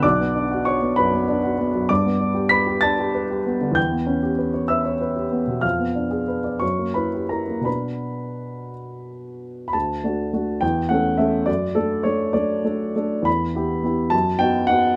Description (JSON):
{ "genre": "classical, romantic character piece for solo piano", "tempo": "56-71 BPM (dotted quarters)", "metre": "6/8", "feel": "rubato", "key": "B minor, D major from 9.7 s", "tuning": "A4 = 440 Hz", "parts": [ { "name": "warm upright piano", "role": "solo", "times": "0.0-15.0 s", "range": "B1 to B6", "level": "-22 LUFS", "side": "equal", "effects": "none" } ], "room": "light reverb", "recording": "close, detailed microphones", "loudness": "-22 LUFS", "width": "mono", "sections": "0.0-9.7 A section; 9.7-15.0 B section", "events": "none", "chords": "0.0 Bm; 1.9 G; 3.8 C#m7b5/E; 5.6 Fdim7; 6.6 F#7b9; 7.7 Bm; 9.7 D; 10.6 A/E; 11.5 D/F#; 13.3 Em; 14.1 B/F#" }